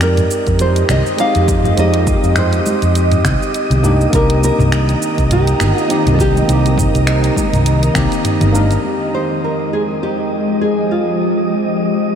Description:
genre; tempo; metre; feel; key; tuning
sunset chillout; 102 BPM; 4/4; swing 56% on 16ths; F minor; A4 = 440 Hz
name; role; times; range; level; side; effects
nylon-string guitar; melody; 0.0-11.7 s; Eb4 to F5; -20 LUFS; equal; ping-pong delay, shimmer reverb
tine electric piano; accompaniment; 0.0-12.2 s; F2 to Bb4; -20 LUFS; equal; auto-pan, ping-pong delay, shimmer reverb
ethereal airy pad; sustained chords; 0.0-12.2 s; Eb3 to Bb5; -20 LUFS; right 1 dB; ensemble chorus, built-in reverb, shimmer reverb
fretless electric bass; bass; 0.0-8.8 s; G1 to F2; -14 LUFS; equal; wide subtle chorus
smooth R&B drum kit; drums; 0.0-8.8 s; cabasa, finger snaps, hi-hat, toms; -21 LUFS; right 1 dB; none
wind-like tuned noise texture; texture; 0.4-12.2 s; Eb5 to Eb6; -28 LUFS; right 2 dB; built-in reverb, analog chorus, shimmer reverb
electronic kick drum; drums; 0.5-8.1 s; none; -19 LUFS; equal; overdrive
congas; percussion; 0.9-8.8 s; none; -26 LUFS; left 4 dB; none
room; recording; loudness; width
moderate huge ambient reverb, RT60 7.3 s; dreamy mix soaked in reverb; -12 LUFS; side -8 dB against mid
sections
0.0-8.8 A section; 8.8-12.2 B section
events
filter sweep on ambient pad 8.8-12.2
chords
0.0 Fm9; 3.8 Cm9; 8.8 Fm9

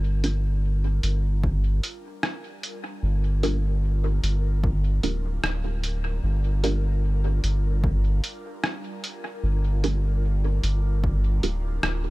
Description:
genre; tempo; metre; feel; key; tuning
ambient dub; 75 BPM; 4/4; swing 56% on 16ths; G minor; A4 = 440 Hz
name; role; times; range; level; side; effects
airy breathy pad; sustained chords; 0.0-12.1 s; G3 to Bb4; -40 LUFS; left 1 dB; chorus, phaser
round analog bass; bass; 0.0-12.1 s; D1 to G1; -23 LUFS; equal; none
filtered dub chord stab; stabs; 0.2-11.6 s; D4 to Bb4; -32 LUFS; right 2 dB; phaser, cassette tape, dub echo
lo-fi sampler-style drum kit; drums; 0.2-12.0 s; hi-hat, rim click; -30 LUFS; equal; overdrive, dub echo
electronic kick drum; drums; 1.4-11.2 s; none; -27 LUFS; equal; overdrive
room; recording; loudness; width
little or no reverb; none; -22 LUFS; side -20 dB against mid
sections
0.0-12.1 A section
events
fade-in on analog synth pad 0.0-12.1; filter sweep on synth stab 0.0-12.1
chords
0.0 Gm7

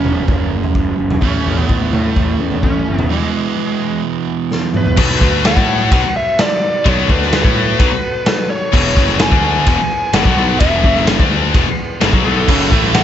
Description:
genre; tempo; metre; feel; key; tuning
quiet-loud alternative rock; 128 BPM; 4/4; straight; unclear; A4 = 444 Hz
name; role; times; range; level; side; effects
bluesy overdriven lead guitar; melody; 0.0-13.0 s; G#3 to G#5; -19 LUFS; equal; distortion
fingerpicked steel-string acoustic guitar; arpeggios; 0.0-5.0 s; F#2 to E4; -25 LUFS; left 6 dB; none
cranked stack guitar; riff; 0.0-5.0, 12.5-13.0 s; E2 to A3; -19 LUFS; right 12 dB; overdrive
fuzz picked electric bass; bass; 0.0-13.0 s; E1 to A2; -20 LUFS; equal; overdrive
raw garage drum kit; drums; 0.0-13.0 s; crash cymbal, kick drum, ride cymbal, snare drum, toms; -15 LUFS; equal; none
tonewheel organ; sustained chords; 5.0-13.0 s; B2 to B4; -28 LUFS; right 1 dB; slow rotary speaker
heavy high-gain guitar; riff; 5.0-13.0 s; E2 to A4; -21 LUFS; equal; distortion
scooped high-gain guitar; riff; 5.0-13.0 s; E2 to A4; -19 LUFS; left 15 dB; distortion
room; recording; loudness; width
light reverb; nothing above 7.9 kHz; -12 LUFS; side -10 dB against mid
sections
0.0-5.0 A section; 5.0-13.0 B section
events
break 3.1-5.0; drum fill 4.5-5.0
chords
0.0 F#m7; 1.2 A; 3.1 E; 5.0 B5; 8.7 E6; 12.5 F#m

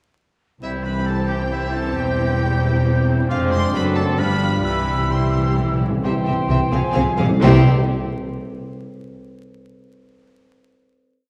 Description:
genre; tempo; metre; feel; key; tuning
quick classical-period movement for symphony orchestra; 132 BPM; 3/4; uneven beats; C major; A4 = 439 Hz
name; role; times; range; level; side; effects
clear chamber violin section; melody; 0.6-7.7 s; E5 to C6; -34 LUFS; equal; none
clear oboe; second line; 0.6-7.6 s; E4 to C5; -32 LUFS; equal; none
rich studio violin section; second line; 0.6-7.7 s; G3 to A4; -32 LUFS; equal; none
small flute group; second line; 0.6-7.7 s; G5 to G6; -31 LUFS; equal; none
dark bassoon; accompaniment; 0.6-7.6 s; E3 to C4; -31 LUFS; equal; none
rich chamber viola section; accompaniment; 0.6-7.7 s; E3 to C4; -30 LUFS; equal; none
mellow French horn section; sustained chords; 0.6-7.6 s; G3 to F4; -30 LUFS; equal; none
clear chamber cello section; bass; 0.6-7.7 s; C2 to C3; -27 LUFS; equal; none
rich chamber double bass section; bass; 0.6-7.7 s; E1 to C2; -23 LUFS; equal; none
timpani; percussion; 4.6-7.6 s; C3; -27 LUFS; equal; none
room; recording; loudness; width
wet scoring stage reverb, RT60 1.9 s; heard from further back in the room, vinyl crackle; -19 LUFS; mono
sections
0.6-6.0 A section; 6.0-7.4 coda; 7.4-8.8 final chord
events
timpani fill 4.6-6.0, 6.7-7.4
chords
0.6 C; 2.0 C/E; 3.3 Dm7b5/F; 3.7 D7/F#; 4.2 G7; 4.6 C; 6.7 Fm/C; 7.4 C

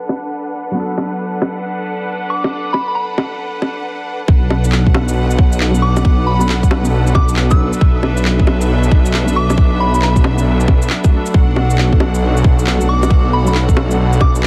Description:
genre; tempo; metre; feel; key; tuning
future garage; 136 BPM; 4/4; swing 64% on 16ths; B minor; A4 = 440 Hz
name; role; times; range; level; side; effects
felt-muted upright piano; accompaniment; 0.0-14.5 s; F#3 to A4; -25 LUFS; equal; sidechain pumping, tape echo
clear studio string section; sustained chords; 0.0-14.5 s; D4 to F#5; -26 LUFS; equal; sidechain pumping
electronic bongos, shaker and handclaps; drums; 0.1-14.5 s; none; -22 LUFS; equal; none
soft synth bell; melody; 2.3-14.4 s; B5 to E6; -24 LUFS; equal; chorus, tape echo
swelling detuned saw bass; bass; 4.3-14.5 s; B1; -17 LUFS; equal; sidechain pumping
electronic kick drum; drums; 4.3-14.3 s; none; -14 LUFS; equal; none
room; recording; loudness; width
little or no reverb; dense, heavily limited modern master, vinyl crackle, low-pass filter; -15 LUFS; mono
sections
0.0-4.3 A section; 4.3-14.5 B section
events
filter sweep 0.0-4.3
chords
0.0 Bm7; 11.3 D/B

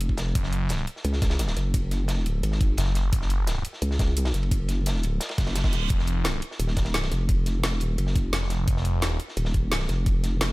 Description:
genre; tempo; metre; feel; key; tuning
dark technical drum and bass; 173 BPM; 4/4; straight; unclear; A4 = 440 Hz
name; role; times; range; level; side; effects
vowel-sweep wobble bass; bass; 0.0-10.5 s; Eb1 to Db2; -25 LUFS; equal; chorus
crunchy breakbeat drum kit; drums; 0.0-10.5 s; ride cymbal, snare drum; -35 LUFS; equal; high-pass filter on cymbals, studio reverb, high-pass filter on snare, high-pass filter on room
drum and bass drum kit; drums; 0.0-10.5 s; hi-hat, snare drum; -30 LUFS; equal; overdrive, studio reverb
electronic kick drum; drums; 0.1-10.1 s; none; -24 LUFS; equal; studio reverb
phased detuned saw bass; bass; 0.4-3.6, 5.9-9.2 s; F1 to Gb1; -25 LUFS; equal; phaser, tube saturation, sidechain pumping
reverse cymbal; sound effects; 5.4-5.9 s; none; -36 LUFS; right 7 dB; none
room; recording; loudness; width
little or no reverb; none; -23 LUFS; side -21 dB against mid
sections
0.0-10.5 A section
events
reverse cymbal 5.4-5.9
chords
0.4 Gb5; 5.9 F5

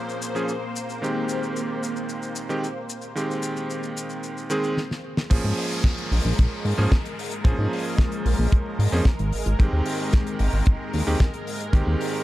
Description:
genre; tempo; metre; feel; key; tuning
nu-disco, nu disco; 112 BPM; 4/4; straight; Bb dorian; A4 = 440 Hz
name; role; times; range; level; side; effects
bright electric grand piano; accompaniment; 0.0-12.2 s; Eb3 to Ab4; -28 LUFS; right 2 dB; sidechain pumping, tape echo
lush unison pad; sustained chords; 0.0-12.2 s; Ab3 to C5; -31 LUFS; left 1 dB; chorus, phaser, vintage 12-bit sampler grit, sidechain pumping
maracas; percussion; 0.1-4.7 s; none; -37 LUFS; left 4 dB; none
damped 70s drum kit; drums; 4.8-12.1 s; crash cymbal, hi-hat, snare drum; -32 LUFS; left 2 dB; none
chorused synth bass; bass; 5.3-12.0 s; Ab1 to Ab2; -22 LUFS; equal; none
kick drum; drums; 5.3-11.8 s; none; -18 LUFS; equal; none
downlifter; sound effects; 5.3-9.6 s; none; -36 LUFS; equal; none
room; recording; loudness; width
light reverb; dark, warm production; -22 LUFS; side -16 dB against mid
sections
0.0-5.3 A section; 5.3-12.2 B section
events
drum fill 4.8-5.3; drop 5.3-12.2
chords
0.0 Bbm7; 0.8 Abmaj7; 5.3 Bbm7; 9.3 Abmaj7

